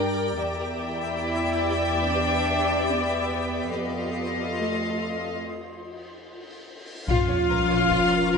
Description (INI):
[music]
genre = cinematic, suspense film score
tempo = 72 BPM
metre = 4/4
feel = straight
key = unclear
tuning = A4 = 443 Hz
[part]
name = warm studio violin section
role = melody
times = 0.0-8.4 s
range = F4 to G5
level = -31 LUFS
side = left 5 dB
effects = none
[part]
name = rich studio violin section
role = second line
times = 0.0-8.4 s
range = D5 to F5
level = -30 LUFS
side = left 4 dB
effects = none
[part]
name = warm studio viola section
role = accompaniment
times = 0.0-8.4 s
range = F4 to D5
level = -28 LUFS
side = left 1 dB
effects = none
[part]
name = twinkling granular texture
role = sustained chords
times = 0.0-8.4 s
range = F4 to C6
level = -33 LUFS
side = left 1 dB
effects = built-in reverb
[part]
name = warm studio double bass section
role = bass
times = 0.0-8.4 s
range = Bb1 to G2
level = -32 LUFS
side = right 3 dB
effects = none
[part]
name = warm studio cello section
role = bass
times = 0.8-8.4 s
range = F3 to E4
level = -30 LUFS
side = right 2 dB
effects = none
[part]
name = cymbal swell and sub drop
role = sound effects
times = 5.8-8.4 s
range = none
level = -35 LUFS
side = left 1 dB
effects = none
[part]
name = mellow French horn section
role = sustained chords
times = 7.1-8.4 s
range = Db4 to F4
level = -29 LUFS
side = left 8 dB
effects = none
[part]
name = taiko ensemble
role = drums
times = 7.1-8.4 s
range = none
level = -30 LUFS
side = left 2 dB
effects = none
[sound]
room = moderate scoring stage reverb, RT60 1.5 s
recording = nothing above 10.4 kHz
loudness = -22 LUFS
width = side -5 dB against mid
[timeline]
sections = 0.0-7.1 A section; 7.1-8.4 B section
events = break 5.4-7.1; cymbal swell 5.8-7.1; impact 7.1-8.4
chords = 0.4 Em7; 3.8 F7; 7.1 Bbm